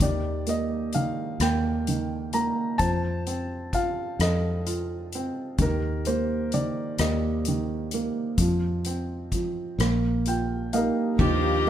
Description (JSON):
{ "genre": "acoustic folk-pop ballad", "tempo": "43 BPM (dotted quarters)", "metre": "6/8", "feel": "straight", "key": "Eb lydian", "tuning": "A4 = 441 Hz", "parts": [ { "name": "felt-muted upright piano", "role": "melody", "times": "0.0-11.7 s", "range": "Eb3 to Bb5", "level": "-26 LUFS", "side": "right 2 dB", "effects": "none" }, { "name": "fingered electric bass", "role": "bass", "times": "0.0-11.7 s", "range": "Bb1 to F2", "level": "-28 LUFS", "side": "left 1 dB", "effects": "none" }, { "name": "soft-mallet drum kit", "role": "drums", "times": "0.0-11.7 s", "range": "hi-hat, kick drum, ride cymbal, rim click", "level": "-31 LUFS", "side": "left 1 dB", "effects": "none" }, { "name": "rich violin", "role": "second line", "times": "11.2-11.7 s", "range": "G4", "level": "-25 LUFS", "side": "left 7 dB", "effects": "none" }, { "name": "warm chamber string section", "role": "sustained chords", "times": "11.2-11.7 s", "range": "G4 to Bb5", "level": "-32 LUFS", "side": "left 1 dB", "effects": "none" }, { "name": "picked old ladder-braced acoustic guitar", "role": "arpeggios", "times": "11.2-11.7 s", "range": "F3 to G4", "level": "-27 LUFS", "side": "right 9 dB", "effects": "none" } ], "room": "light reverb", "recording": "none", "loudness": "-24 LUFS", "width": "side -10 dB against mid", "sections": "0.0-11.2 A section", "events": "felt piano fill 9.8-11.2", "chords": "0.0 Eb; 2.8 F; 5.6 Eb; 8.4 Fsus2; 9.8 Ebadd9", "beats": "| 0.01 1.41 | 2.81 4.21 | 5.61 7.00 | 8.40 9.79 | 11.20" }